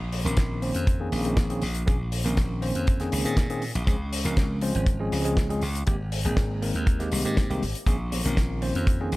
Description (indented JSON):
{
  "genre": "nu-disco, nu disco",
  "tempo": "120 BPM",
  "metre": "4/4",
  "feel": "straight",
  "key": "Bb dorian",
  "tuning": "A4 = 440 Hz",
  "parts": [
    { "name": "glassy slap bass", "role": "bass", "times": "0.0-9.2 s", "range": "Ab1 to Bb2", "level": "-28 LUFS", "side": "equal", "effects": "none" },
    { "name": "damped 70s drum kit", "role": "drums", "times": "0.1-9.2 s", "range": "hi-hat, snare drum", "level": "-33 LUFS", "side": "left 2 dB", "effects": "none" },
    { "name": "bell-like tine electric piano", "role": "accompaniment", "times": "0.2-9.2 s", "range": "Eb3 to C5", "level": "-29 LUFS", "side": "equal", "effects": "medium stereo tremolo, sidechain pumping, low-pass filter" },
    { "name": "kick drum", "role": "drums", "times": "0.4-9.0 s", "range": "none", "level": "-23 LUFS", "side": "equal", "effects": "none" },
    { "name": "congas", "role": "percussion", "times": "8.1-8.2 s", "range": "none", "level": "-41 LUFS", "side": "right 2 dB", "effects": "none" }
  ],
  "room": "small room ambience",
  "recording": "none",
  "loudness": "-23 LUFS",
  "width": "side -20 dB against mid",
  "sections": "0.0-9.2 A section",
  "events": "filter sweep on tine electric piano 0.0-9.2",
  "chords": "0.0 Bbm11; 3.9 Dbmaj7; 5.9 Abmaj9; 7.9 Bbm11"
}